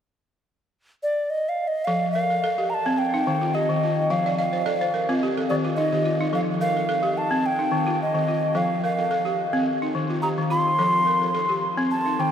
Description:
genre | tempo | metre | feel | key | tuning
west african traditional | 108 BPM | 4/4 | straight | F mixolydian | A4 = 440 Hz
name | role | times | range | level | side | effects
alto ocarina | melody | 1.0-12.3 s | D5 to C6 | -23 LUFS | right 1 dB | diffuse ambient delay
balafon | arpeggios | 1.9-12.3 s | Eb3 to F5 | -24 LUFS | left 1 dB | none
room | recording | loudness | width
wet huge ambient reverb, RT60 8.0 s | dreamy mix soaked in reverb | -21 LUFS | side -8 dB against mid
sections
0.0-1.9 A section; 1.9-12.3 B section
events
balafon fill 4.1-6.3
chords
0.0 N.C.; 1.9 F; 3.0 Eb; 4.1 F; 5.2 N.C.; 6.3 F; 7.4 Eb; 8.6 F; 9.7 Eb; 10.8 F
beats
0.20 0.76 1.31 | 1.87 2.43 2.98 3.54 | 4.10 4.66 5.21 5.77 | 6.33 6.89 7.45 8.00 | 8.56 9.12 9.68 10.23 | 10.79 11.35 11.91

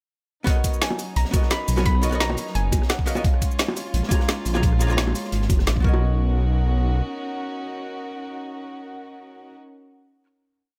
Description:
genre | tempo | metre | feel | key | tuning
liquid drum and bass | 173 BPM | 4/4 | swing 53% on 16ths | B lydian | A4 = 440 Hz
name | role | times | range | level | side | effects
archtop guitar, miked and amplified | accompaniment | 0.4-10.3 s | A#3 to A#5 | -34 LUFS | equal | delay
soft round pluck | melody | 0.5-3.4 s | E#5 to B5 | -34 LUFS | equal | chorus, delay
warm chamber string section | sustained chords | 0.5-9.6 s | F#3 to C#5 | -35 LUFS | equal | none
crunchy breakbeat drum kit | drums | 0.5-5.8 s | hi-hat, snare drum | -38 LUFS | equal | none
drum and bass drum kit | drums | 0.5-5.7 s | cabasa, hi-hat, rim click, snare drum | -29 LUFS | equal | overdrive, studio reverb
electronic kick drum | drums | 0.5-5.9 s | none | -23 LUFS | equal | overdrive, studio reverb
bongos | percussion | 0.9-6.0 s | none | -32 LUFS | equal | none
swelling detuned saw bass | bass | 1.2-7.0 s | E#1 to B1 | -24 LUFS | equal | tube saturation
room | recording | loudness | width
small room ambience | none | -22 LUFS | mono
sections
0.5-6.0 drop; 6.0-8.8 final hit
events
drop 0.5-6.0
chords
0.5 Bmaj9; 3.2 A#m7; 5.8 Bmaj9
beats
| 0.47 0.82 1.16 1.51 | 1.86 2.20 2.55 2.90 | 3.24 3.59 3.94 4.28 | 4.63 4.98 5.33 5.67 | 6.02 6.37 6.71 7.06 | 7.41 7.75 8.10 8.45

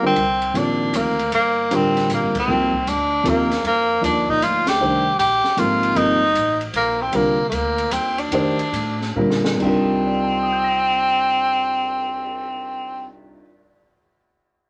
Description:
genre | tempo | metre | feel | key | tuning
modal jazz | 132-155 BPM | 3/4 | swing 66% on 8ths | C dorian | A4 = 440 Hz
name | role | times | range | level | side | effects
bright tenor saxophone | melody | 0.0-13.1 s | A3 to G4 | -22 LUFS | equal | none
dark concert grand piano | accompaniment | 0.0-14.2 s | C3 to D7 | -24 LUFS | equal | none
upright bass | bass | 0.2-13.4 s | Eb1 to Bb2 | -32 LUFS | equal | none
open jazz drum kit | drums | 0.2-12.2 s | crash cymbal, cymbal swell, hi-hat, kick drum, ride cymbal, snare drum | -32 LUFS | equal | none
room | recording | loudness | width
moderate studio reverb, RT60 0.7 s | none | -20 LUFS | mono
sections
0.2-9.6 A section; 9.6-12.3 B section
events
band accent 2.3, 4.6; slowing down 7.1-9.6; drum fill 9.2-9.6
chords
0.2 Cm11; 2.5 Bb/C; 4.8 Cm11; 7.1 Bb/C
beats
| 0.16 0.55 0.93 | 1.32 1.71 2.10 | 2.48 2.87 3.26 | 3.65 4.03 4.42 | 4.81 5.20 5.58 | 5.97 6.36 6.75 | 7.13 7.52 7.92 | 8.32 8.73 9.16 | 9.61 10.06 10.52 | 10.97 11.43 11.88

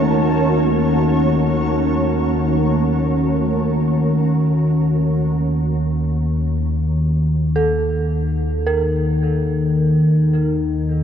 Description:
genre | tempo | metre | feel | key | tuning
dark ambient drone | free time | none | none | unclear | A4 = 437 Hz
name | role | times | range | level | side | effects
granular cloud pad | sustained chords | 0.0-4.5 s | Db4 to Db5 | -22 LUFS | right 1 dB | built-in reverb
dark detuned synth bell | arpeggios | 0.0-11.0 s | Db4 to Bb4 | -24 LUFS | right 3 dB | chorus, tremolo, tape echo
analog drone | drone | 0.0-11.0 s | Eb2 to Eb3 | -17 LUFS | left 1 dB | chorus
bubbling stepped-filter texture | texture | 0.0-4.5 s | A3 to A5 | -26 LUFS | right 2 dB | chorus, built-in reverb
room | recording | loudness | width
wet huge ambient reverb, RT60 8.1 s | dark, warm production, nothing above 7.5 kHz | -16 LUFS | side -8 dB against mid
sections
0.0-4.5 A section; 4.5-11.0 B section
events
filter sweep on synth drone 0.0-4.5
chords
0.0 Ebm7; 4.5 Eb5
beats
free time

